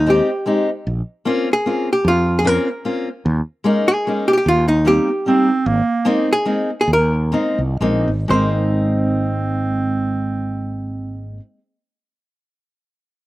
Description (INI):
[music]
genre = musette waltz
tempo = 116-152 BPM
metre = 3/4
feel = swing 55% on 8ths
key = Ab major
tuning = A4 = 440 Hz
[part]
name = archtop guitar, miked and amplified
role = melody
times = 0.0-11.4 s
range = Eb4 to C5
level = -17 LUFS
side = equal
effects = slapback echo
[part]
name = fretless electric bass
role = bass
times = 0.0-11.4 s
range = Ab1 to F2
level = -20 LUFS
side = equal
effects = none
[part]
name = fingerpicked steel-string acoustic guitar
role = accompaniment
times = 0.1-11.4 s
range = G3 to G4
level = -19 LUFS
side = left 1 dB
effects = slapback echo
[part]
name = warm clarinet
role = second line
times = 5.3-6.2, 8.3-11.4 s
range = Bb3 to C4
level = -21 LUFS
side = right 3 dB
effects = none
[sound]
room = little or no reverb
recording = recorded outdoors, with no room sound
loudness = -16 LUFS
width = side -17 dB against mid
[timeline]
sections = 0.0-8.3 A section; 8.3-11.4 B section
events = slowing down 5.7-8.3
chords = 0.0 Abmaj7; 0.9 Bbmadd9; 3.3 Eb7sus4; 4.5 Eb6; 5.7 Abadd9